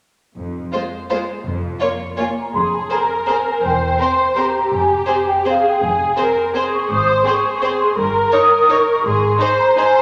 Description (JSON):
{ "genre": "classical, orchestral ballroom waltz", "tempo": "166 BPM", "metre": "3/4", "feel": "uneven beats, rubato", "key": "F minor", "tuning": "A4 = 440 Hz", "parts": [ { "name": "rich studio double bass section", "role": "bass", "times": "0.4-9.3 s", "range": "E1 to Ab1", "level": "-31 LUFS", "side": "equal", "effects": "none" }, { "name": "rich symphonic cello section", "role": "bass", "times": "0.4-9.3 s", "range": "E2 to Ab2", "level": "-32 LUFS", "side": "equal", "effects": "none" }, { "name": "rich chamber violin section", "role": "melody", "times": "0.7-9.9 s", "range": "C5 to Db5", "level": "-27 LUFS", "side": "equal", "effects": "none" }, { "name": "clear symphonic violin section", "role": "second line", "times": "0.7-9.8 s", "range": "C4 to Bb4", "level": "-30 LUFS", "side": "equal", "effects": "none" }, { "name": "rich symphonic viola section", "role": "accompaniment", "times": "0.7-10.0 s", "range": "Ab3 to C5", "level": "-21 LUFS", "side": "equal", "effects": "none" }, { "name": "mellow hollow large flute ensemble", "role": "second line", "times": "2.2-10.0 s", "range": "F5 to Eb6", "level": "-20 LUFS", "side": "equal", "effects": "none" } ], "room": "wet scoring stage reverb, RT60 1.9 s", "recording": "none", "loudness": "-17 LUFS", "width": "mono", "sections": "0.4-2.5 A section; 2.5-10.0 B section", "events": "none", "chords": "0.4 Fm; 1.5 Bb5/F; 2.5 Fm; 3.6 C7/E; 4.7 Fm; 6.9 Ab; 8.0 Eb7/G; 9.1 Ab" }